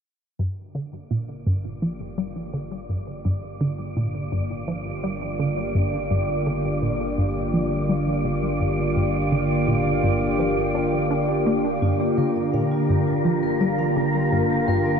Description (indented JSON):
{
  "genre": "ambient, sequencer-driven space music",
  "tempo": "84 BPM",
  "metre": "4/4",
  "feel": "straight",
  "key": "G minor",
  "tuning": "A4 = 440 Hz",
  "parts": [
    { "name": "lush unison pad", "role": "sustained chords", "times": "0.4-15.0 s", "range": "D3 to G4", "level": "-24 LUFS", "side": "equal", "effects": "chorus" },
    { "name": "resonant blip pluck", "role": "riff", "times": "0.4-14.8 s", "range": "G2 to D4", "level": "-26 LUFS", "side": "equal", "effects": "phaser, tape echo" },
    { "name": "analog drone", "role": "bass", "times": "0.4-15.0 s", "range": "G1", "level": "-34 LUFS", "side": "equal", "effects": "chorus" },
    { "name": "wind-like tuned noise texture", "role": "texture", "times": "2.4-15.0 s", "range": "Bb4 to D5", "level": "-29 LUFS", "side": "right 1 dB", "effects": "built-in reverb" },
    { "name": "vibraphone with medium hard mallets", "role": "arpeggios", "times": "11.8-15.0 s", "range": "F4 to F5", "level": "-40 LUFS", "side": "right 2 dB", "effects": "auto-pan, tape echo" }
  ],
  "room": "moderate huge ambient reverb, RT60 9.7 s",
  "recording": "in a vast, echoing space",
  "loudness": "-21 LUFS",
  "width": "side -6 dB against mid",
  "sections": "0.4-11.8 A section; 11.8-15.0 B section",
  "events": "fade-in on analog synth pad 0.4-11.8; fade-in on synth drone 0.4-11.8; fade-in on synth texture 0.4-11.8; filter sweep on synth arpeggio sound 0.4-11.8",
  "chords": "0.4 Gm7",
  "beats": "| 0.39 1.11 1.82 2.54 | 3.25 3.96 4.68 5.39 | 6.11 6.82 7.54 8.25 | 8.96 9.68 10.39 11.11 | 11.82 12.54 13.25 13.96 | 14.68"
}